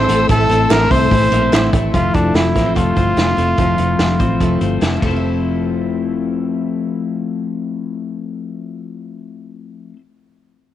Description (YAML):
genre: jangly indie pop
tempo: 145 BPM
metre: 4/4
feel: straight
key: F major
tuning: A4 = 439 Hz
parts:
  - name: breathy trumpet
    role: melody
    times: 0.0-4.8 s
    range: D4 to C5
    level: -18 LUFS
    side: right 1 dB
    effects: cassette tape, plate reverb
  - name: picked steel-string acoustic guitar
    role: accompaniment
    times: 0.0-10.1 s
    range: A2 to E4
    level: -24 LUFS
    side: right 8 dB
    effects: tube saturation, cassette tape, plate reverb
  - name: warm studio string section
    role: sustained chords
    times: 0.0-1.9 s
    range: A4 to E6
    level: -26 LUFS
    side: right 2 dB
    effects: cassette tape, plate reverb
  - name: twelve-string electric guitar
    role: arpeggios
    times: 0.0-10.0 s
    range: A2 to E4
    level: -20 LUFS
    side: left 6 dB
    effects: cassette tape, plate reverb
  - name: vintage muted fingered electric bass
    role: bass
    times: 0.0-9.9 s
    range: F1 to C2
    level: -20 LUFS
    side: equal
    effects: none
  - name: vintage drum kit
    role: drums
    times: 0.1-5.1 s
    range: hi-hat, kick drum, ride cymbal, snare drum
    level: -19 LUFS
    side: equal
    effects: cassette tape
  - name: group handclap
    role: percussion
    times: 0.7-1.6 s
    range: none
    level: -30 LUFS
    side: right 13 dB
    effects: none
room: moderate booth ambience, RT60 0.2 s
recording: home recording on cassette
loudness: -14 LUFS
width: side -12 dB against mid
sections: 0.0-1.9 A section; 1.9-5.2 B section; 5.2-8.5 C section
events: none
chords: 0.0 Am; 1.9 Fmaj7